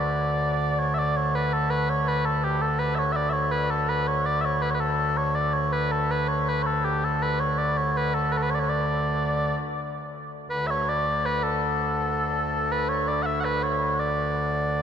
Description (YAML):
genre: medieval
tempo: 109 BPM (dotted quarters)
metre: 6/8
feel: straight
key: unclear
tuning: A4 = 440 Hz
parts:
  - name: mellow small bagpipes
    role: solo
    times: 0.0-14.8 s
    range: D2 to F#5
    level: -23 LUFS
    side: equal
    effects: none
room: wet cathedral reverb, RT60 5.0 s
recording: in a vast, echoing space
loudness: -23 LUFS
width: side -8 dB against mid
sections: 1.0-9.8 A section; 9.8-14.8 B section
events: none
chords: none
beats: 0.40 | 0.96 1.51 | 2.06 2.61 | 3.17 3.72 | 4.27 4.82 | 5.37 5.92 | 6.47 7.02 | 7.57 8.12 | 8.67 9.22 | 9.77 10.32 | 10.87 11.42 | 11.96 12.51 | 13.06 13.61 | 14.15 14.70